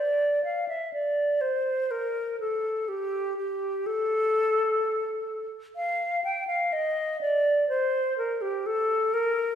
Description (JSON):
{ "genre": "classical, baroque-style fantasia for unaccompanied flute", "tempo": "62 BPM", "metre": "3/4", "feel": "rubato", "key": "Bb major from 5.8 s", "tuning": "A4 = 439 Hz", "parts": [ { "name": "hollow concert flute", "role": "solo", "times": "0.0-9.6 s", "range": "G4 to G5", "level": "-24 LUFS", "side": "equal", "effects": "none" } ], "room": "wet scoring stage reverb, RT60 1.7 s", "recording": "heard from further back in the room", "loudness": "-24 LUFS", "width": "side -9 dB against mid", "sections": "0.0-9.6 A section", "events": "none", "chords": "none" }